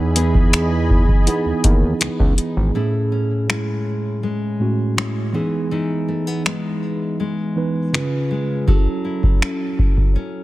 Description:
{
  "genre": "contemporary R&B",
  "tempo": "81 BPM",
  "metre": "4/4",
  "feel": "straight",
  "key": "E major",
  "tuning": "A4 = 440 Hz",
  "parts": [
    { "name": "mellow tine electric piano", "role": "accompaniment", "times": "0.0-10.4 s", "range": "A2 to B4", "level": "-22 LUFS", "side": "right 3 dB", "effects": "slow stereo tremolo" },
    { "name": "warm analog pad", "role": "sustained chords", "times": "0.0-2.7 s", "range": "G#4 to B5", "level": "-29 LUFS", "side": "right 1 dB", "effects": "chorus" },
    { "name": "nylon-string guitar", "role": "arpeggios", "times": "0.0-10.4 s", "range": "A2 to A4", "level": "-26 LUFS", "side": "left 4 dB", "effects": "digital delay" },
    { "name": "fat analog bass", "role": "bass", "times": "0.0-2.7 s", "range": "G#1 to E2", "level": "-19 LUFS", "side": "equal", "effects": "none" },
    { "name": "small celesta", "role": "texture", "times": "0.0-0.5 s", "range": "none", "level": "barely audible", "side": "none", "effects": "none" },
    { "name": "booming analog drum machine", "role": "drums", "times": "0.2-10.2 s", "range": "finger snaps, hi-hat, kick drum", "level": "-16 LUFS", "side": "equal", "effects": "soft clipping on snare" }
  ],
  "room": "little or no reverb",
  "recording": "dense, heavily limited modern master",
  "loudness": "-17 LUFS",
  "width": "side -17 dB against mid",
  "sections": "0.0-2.8 A section; 2.8-10.4 B section",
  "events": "none",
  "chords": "0.0 Emaj7; 2.8 Amaj7; 5.3 Emaj7; 7.9 C#7; 8.7 F#m7"
}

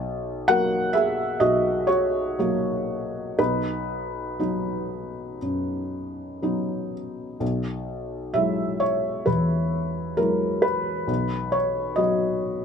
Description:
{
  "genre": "neoclassical minimalist piano",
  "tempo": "59-67 BPM",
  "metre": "4/4",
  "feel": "rubato",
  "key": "B major",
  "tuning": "A4 = 440 Hz",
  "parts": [
    { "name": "felt-muted upright piano", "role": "solo", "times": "0.0-12.6 s", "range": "B1 to F#5", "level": "-22 LUFS", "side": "equal", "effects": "none" }
  ],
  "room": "light reverb",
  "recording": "close, detailed microphones",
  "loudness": "-22 LUFS",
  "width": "side -6 dB against mid",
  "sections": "0.0-7.4 A section; 7.4-12.6 A section",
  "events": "none",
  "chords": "0.0 F#/B; 3.4 B; 7.4 Eadd9/B; 11.1 B"
}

